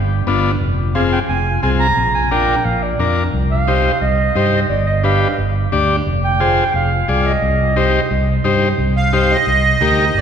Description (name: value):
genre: latin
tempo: 176 BPM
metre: 4/4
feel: straight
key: C minor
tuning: A4 = 440 Hz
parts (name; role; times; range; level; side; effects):
- fingered electric bass; bass; 0.0-10.2 s; F1 to G2; -17 LUFS; equal; none
- overdriven combo organ; accompaniment; 0.3-10.1 s; B3 to D5; -18 LUFS; left 4 dB; none
- mellow clarinet; second line; 0.9-8.5 s; D5 to Bb5; -20 LUFS; right 4 dB; none
- accordion; melody; 9.0-10.2 s; D5 to F5; -15 LUFS; right 4 dB; light tremolo tuning
room: wet church reverb, RT60 3.2 s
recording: recorded in a church or concert hall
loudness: -13 LUFS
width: side -8 dB against mid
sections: 0.0-8.8 A section; 8.8-10.2 B section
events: clarinet solo 0.0-8.8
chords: 0.0 G7; 0.6 Fm; 2.0 Bb; 3.3 Cm; 4.7 G7; 6.1 Fm; 7.4 Cm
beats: 0.28 | 0.62 0.96 1.30 1.64 | 1.98 2.32 2.66 3.00 | 3.34 3.68 4.02 4.36 | 4.70 5.04 5.38 5.72 | 6.06 6.41 6.75 7.09 | 7.43 7.77 8.11 8.45 | 8.79 9.13 9.47 9.81 | 10.15